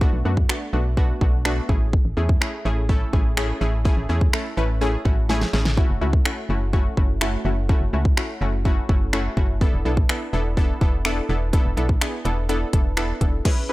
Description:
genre	dance-pop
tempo	125 BPM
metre	4/4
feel	straight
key	unclear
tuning	A4 = 440 Hz
part	analog pluck	accompaniment	0.0-13.7 s	A3 to B4	-26 LUFS	equal	chorus, sidechain pumping
part	organ-like FM bass	bass	0.0-13.4 s	E1 to F#2	-23 LUFS	equal	sidechain pumping
part	pop drum kit	drums	0.0-13.6 s	crash cymbal, finger snaps, hi-hat, kick drum, snare drum	-20 LUFS	equal	none
room	little or no reverb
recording	dry, gritty hardware recording, transformer saturation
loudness	-19 LUFS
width	side -18 dB against mid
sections	0.0-13.5 A section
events	drum fill 5.3-5.8, 13.5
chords	0.0 Bm7; 1.7 Amaj7; 5.8 F#m7; 9.6 E7sus4

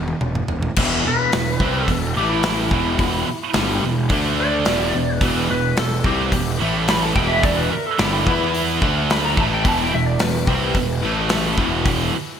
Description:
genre	hard rock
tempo	108 BPM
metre	4/4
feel	straight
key	E minor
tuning	A4 = 440 Hz
part	fuzz picked electric bass	bass	0.0-12.2 s	E1 to E2	-24 LUFS	equal	overdrive
part	big rock drum kit	drums	0.1-12.0 s	crash cymbal, hi-hat, kick drum, snare drum, toms	-23 LUFS	left 1 dB	gated reverb
part	crunchy overdriven guitar	riff	0.8-12.2 s	E2 to E4	-25 LUFS	left 9 dB	ensemble chorus
part	scooped high-gain guitar	riff	0.8-12.2 s	E2 to E4	-22 LUFS	right 9 dB	distortion
part	lightly driven lead guitar	melody	1.1-11.3 s	E4 to B5	-24 LUFS	equal	wide subtle chorus, ping-pong delay
room	moderate lush hall reverb, RT60 2.5 s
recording	bright 1980s-style digital production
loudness	-17 LUFS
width	side -8 dB against mid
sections	0.8-12.4 A section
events	drum fill 0.0-0.8; lead electric guitar solo 0.8-12.4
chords	0.0 E5; 0.8 Em; 2.2 A5; 2.7 Em; 4.1 D5; 4.7 Em; 6.6 A5; 7.2 Em; 8.8 D5; 9.4 Em; 11.0 A5; 11.6 E5

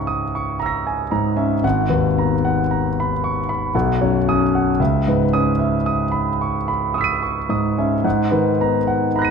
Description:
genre	classical, impressionist solo piano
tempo	52-58 BPM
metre	3/4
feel	rubato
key	C# dorian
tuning	A4 = 442 Hz
part	clear concert grand piano	solo	0.0-9.3 s	G#1 to D#7	-17 LUFS	equal	none
room	moderate scoring stage reverb, RT60 1.5 s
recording	dark, warm production, nothing above 10.5 kHz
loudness	-17 LUFS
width	side -6 dB against mid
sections	0.0-9.3 A section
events	none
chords	0.0 C#m6; 1.6 G#m9; 3.7 Badd9; 4.8 C#m9; 8.0 G#m9

